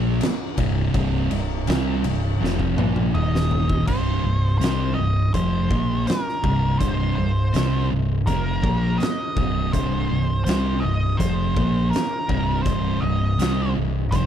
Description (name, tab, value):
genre	stoner and doom metal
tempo	82 BPM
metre	4/4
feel	straight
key	C minor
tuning	A4 = 443 Hz
part	thick fuzz guitar	riff	0.0-14.3 s	C2 to C4	-26 LUFS	left 8 dB	distortion
part	thick fuzz guitar	riff	0.0-14.3 s	C2 to C4	-25 LUFS	right 7 dB	distortion
part	growling fingered electric bass	bass	0.0-14.3 s	C1 to C2	-25 LUFS	equal	overdrive
part	oversized low-tuned drum kit	drums	0.2-14.3 s	crash cymbal, hi-hat, kick drum, ride cymbal, snare drum, toms	-26 LUFS	left 1 dB	none
part	octave-fuzz lead guitar	melody	3.1-14.3 s	Bb4 to Eb5	-28 LUFS	equal	wah, distortion
room	little or no reverb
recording	none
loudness	-19 LUFS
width	side -9 dB against mid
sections	0.0-3.9 A section; 3.9-14.3 B section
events	drum fill 2.4-3.9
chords	0.0 C5; 3.1 Eb5; 3.9 Cm